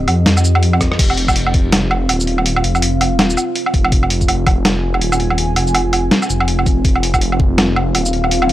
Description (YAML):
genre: half-time drum and bass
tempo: 164 BPM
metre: 4/4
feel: swing 59% on 16ths, half-time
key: F minor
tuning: A4 = 439 Hz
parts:
  - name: deep dark ambient pad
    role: sustained chords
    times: 0.0-8.5 s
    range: C4 to Ab5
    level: -20 LUFS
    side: right 1 dB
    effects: chorus, built-in reverb, vintage 12-bit sampler grit, sidechain pumping
  - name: dark detuned saw bass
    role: bass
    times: 0.0-8.5 s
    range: Eb1 to F2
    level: -17 LUFS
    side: equal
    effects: none
  - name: boom bap sampler-style drum kit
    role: drums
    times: 0.1-8.5 s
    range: crash cymbal, hi-hat, rim click, shaker, snare drum, woodblock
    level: -16 LUFS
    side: right 1 dB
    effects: none
  - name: electronic kick drum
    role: drums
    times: 0.8-7.5 s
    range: none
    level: -15 LUFS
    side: equal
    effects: none
room: digital ambience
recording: dry, gritty hardware recording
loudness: -12 LUFS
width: side -14 dB against mid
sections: 1.0-8.5 A section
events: drum fill 0.8; drop 1.0-8.5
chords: 0.0 F5